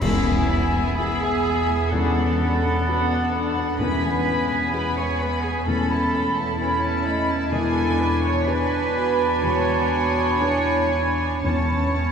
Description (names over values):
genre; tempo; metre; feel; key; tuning
cinematic, emotional film score for orchestra; 64 BPM; 4/4; rubato; E major; A4 = 440 Hz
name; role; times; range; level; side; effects
warm studio violin section; melody; 0.0-12.1 s; D5 to B5; -32 LUFS; left 1 dB; none
bright clarinet; second line; 0.0-12.1 s; B3 to D4; -30 LUFS; equal; none
clear oboe; second line; 0.0-12.1 s; E5 to A5; -32 LUFS; equal; none
hollow large flute ensemble; second line; 0.0-12.1 s; G#5 to B5; -29 LUFS; equal; none
warm chamber violin section; second line; 0.0-12.1 s; C#4 to G#4; -34 LUFS; left 1 dB; none
dark studio viola section; accompaniment; 0.0-12.1 s; G#3 to D4; -32 LUFS; equal; none
felt-muted upright piano; accompaniment; 0.0-12.1 s; E1 to B4; -28 LUFS; left 2 dB; none
dark French horn section; sustained chords; 0.0-12.1 s; B3 to D#5; -29 LUFS; left 4 dB; none
dark symphonic double bass section; bass; 0.0-12.1 s; E2; -28 LUFS; right 2 dB; none
warm symphonic cello section; bass; 0.0-12.1 s; E4 to C#5; -26 LUFS; right 4 dB; none
clash cymbals and concert bass drum; percussion; 0.0-1.9 s; none; -30 LUFS; equal; none
timpani; percussion; 0.0-5.2, 11.4-12.1 s; E2; -31 LUFS; equal; none
room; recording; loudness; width
wet church reverb, RT60 3.0 s; recorded in a church or concert hall; -19 LUFS; side -7 dB against mid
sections
0.0-12.1 A section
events
band accent 0.0-1.0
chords
0.0 E; 1.9 Bm/E; 3.8 E; 5.7 Aadd9/E; 7.5 E7; 11.4 Aadd9/E